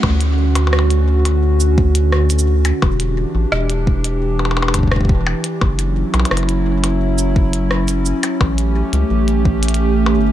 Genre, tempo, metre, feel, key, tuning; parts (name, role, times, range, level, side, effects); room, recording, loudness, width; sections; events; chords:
IDM; 86 BPM; 4/4; straight; D major; A4 = 439 Hz
warbly tape-like pad; sustained chords; 0.0-10.3 s; D3 to G4; -19 LUFS; right 1 dB; chorus, built-in reverb, sidechain pumping
rubbery square bass; bass; 0.0-10.3 s; E1 to D2; -16 LUFS; equal
electronic kick drum; drums; 0.0-9.6 s; -16 LUFS; equal
glitchy drum kit; drums; 0.0-10.2 s; cabasa, hi-hat, percussion blips, rim click; -22 LUFS; left 2 dB
little or no reverb; -14 LUFS; side -12 dB against mid
0.0-10.3 A section
0.0 Dmaj7; 2.8 Em7; 5.6 F#7(no3); 8.4 A7